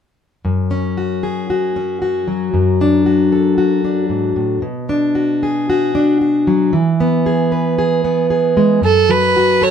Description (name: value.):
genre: folk.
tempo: 114 BPM.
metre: 4/4.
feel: straight.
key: F# minor.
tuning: A4 = 440 Hz.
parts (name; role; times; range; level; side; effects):
fingerpicked plugged-in steel-string acoustic guitar; accompaniment; 0.4-9.7 s; F#2 to B4; -14 LUFS; left 1 dB; none.
warm fiddle; melody; 8.8-9.7 s; A4 to C#5; -12 LUFS; right 5 dB; none.
room: moderate studio reverb, RT60 0.6 s.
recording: band playing live in one room.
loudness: -13 LUFS.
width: side -8 dB against mid.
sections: 0.4-8.8 A section.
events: none.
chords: 0.4 F#5; 2.5 D/F#; 4.6 Bm; 6.7 E; 8.8 F#m.